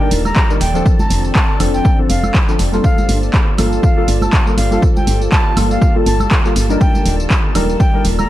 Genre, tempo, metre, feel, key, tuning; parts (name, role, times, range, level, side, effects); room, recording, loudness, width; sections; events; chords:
deep house; 121 BPM; 4/4; swing 56% on 16ths; G minor; A4 = 440 Hz
breathy bright concert flute; melody; 0.0-8.3 s; F5 to Bb5; -23 LUFS; right 1 dB; digital delay
hollow soft pad; sustained chords; 0.0-8.3 s; Eb3 to D5; -27 LUFS; left 1 dB; chorus, vintage 12-bit sampler grit, sidechain pumping
deep mellow chord stab; stabs; 0.0-8.1 s; F3 to Bb4; -20 LUFS; left 1 dB; chorus, sidechain pumping, digital delay
granular cloud pad; texture; 0.0-8.3 s; Eb3 to A5; -29 LUFS; right 1 dB
soft string machine; texture; 0.0-8.3 s; A4 to A5; -31 LUFS; equal; ensemble chorus, sidechain pumping
woody FM bass; bass; 0.1-8.3 s; Eb1 to G1; -17 LUFS; equal; sidechain pumping
punchy analog drum machine; drums; 0.1-8.3 s; handclaps, hi-hat, tambourine, woodblock; -21 LUFS; equal
congas; percussion; 0.3-8.3 s; -24 LUFS; right 2 dB
electronic kick drum; drums; 0.4-7.9 s; -14 LUFS; equal; overdrive
digital ambience; -11 LUFS; side -14 dB against mid
0.0-8.3 A section
0.0 Ebmaj7; 0.9 Dm7/F; 2.8 Gm9; 6.8 Ebmaj7